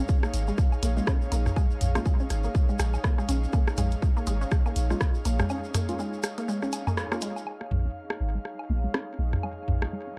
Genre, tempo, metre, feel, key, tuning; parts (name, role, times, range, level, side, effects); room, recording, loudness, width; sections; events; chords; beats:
minimal techno; 122 BPM; 4/4; swing 58% on 16ths; Bb minor; A4 = 440 Hz
punchy sub bass; bass; 0.0-9.9 s; Ab1 to Bb1; -29 LUFS; equal; tube saturation, sidechain pumping
airy breathy pad; texture; 0.0-10.2 s; Eb4 to F5; -39 LUFS; equal; chorus, sidechain pumping
electronic kick drum; drums; 0.1-5.1 s; -26 LUFS; equal
tube shaker; percussion; 0.1-7.4 s; -47 LUFS; equal
resonant blip pluck; riff; 0.2-10.1 s; Ab3 to Db4; -37 LUFS; equal; phaser, subtle chorus, sidechain pumping, digital delay
booming analog drum machine; percussion; 0.2-9.9 s; rim click, toms, woodblock; -33 LUFS; equal; digital delay
house drum kit; drums; 0.3-9.1 s; hi-hat, rim click; -36 LUFS; equal
filtered dub chord stab; stabs; 1.0-9.9 s; Ab3 to F4; -38 LUFS; equal; phaser, lush chorus, digital delay
light reverb; dark, warm production; -27 LUFS; mono
0.0-7.5 A section; 7.5-10.2 B section
filter sweep on synth arpeggio sound 0.0-7.5; break 5.5-7.5; band accent 7.0
0.0 Bbm7
0.09 0.58 1.07 | 1.56 2.06 2.55 3.04 | 3.53 4.02 4.52 5.01 | 5.50 5.99 6.48 6.97 | 7.47 7.96 8.45 8.94 | 9.43 9.93